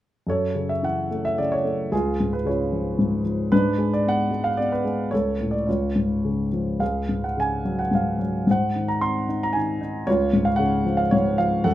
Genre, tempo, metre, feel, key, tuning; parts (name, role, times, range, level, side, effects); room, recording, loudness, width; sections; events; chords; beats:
classical, lyrical solo piano; 104-115 BPM; 3/4; rubato; A4 = 443 Hz
dark grand piano; solo; 0.3-11.7 s; C#2 to B#5; -20 LUFS; equal
little or no reverb; close, detailed microphones; -20 LUFS; side -13 dB against mid
0.3-11.7 A section
0.3 F#m7; 1.9 C#; 3.5 G#dim; 5.1 Aadd11/C#; 5.7 C#; 6.8 C#sus4; 8.5 G#; 10.1 C#
| 0.26 0.83 1.38 | 1.92 2.45 2.98 | 3.52 4.06 4.58 | 5.12 5.68 6.24 | 6.81 7.37 7.92 | 8.47 9.01 9.55 | 10.07 10.60 11.13 | 11.66